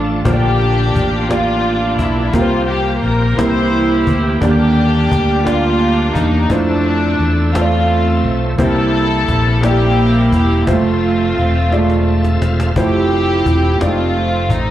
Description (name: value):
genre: slow gospel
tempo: 58 BPM (dotted quarters)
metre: 6/8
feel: straight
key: F major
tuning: A4 = 440 Hz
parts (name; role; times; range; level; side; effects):
- warm studio string section; melody; 0.0-14.7 s; A3 to C5; -16 LUFS; equal; none
- clear concert grand piano; accompaniment; 0.0-14.7 s; C3 to F5; -18 LUFS; right 1 dB; none
- bright tonewheel organ; sustained chords; 0.0-12.7 s; E3 to A5; -24 LUFS; right 2 dB; slow rotary speaker, chorus vibrato
- fingered electric bass; bass; 0.0-14.7 s; E1 to F2; -17 LUFS; left 1 dB; none
- cajon; drums; 0.3-14.7 s; none; -21 LUFS; left 1 dB; none
room: light reverb, small room ambience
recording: live gig heard through the venue's PA, club reverb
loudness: -12 LUFS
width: side -12 dB against mid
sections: 0.0-12.8 A section; 12.8-14.7 A section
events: drum fill 11.7-12.8; tonewheel organ fill 11.7-12.8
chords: 0.3 Gm7; 2.3 C7sus4; 3.4 C7; 4.4 Ebmaj7; 6.5 Fmaj7; 8.6 C7; 10.7 Fmaj7; 13.8 F13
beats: | 0.25 1.30 | 2.34 3.38 | 4.42 5.46 | 6.50 7.55 | 8.59 9.63 | 10.67 11.72 | 12.76 13.80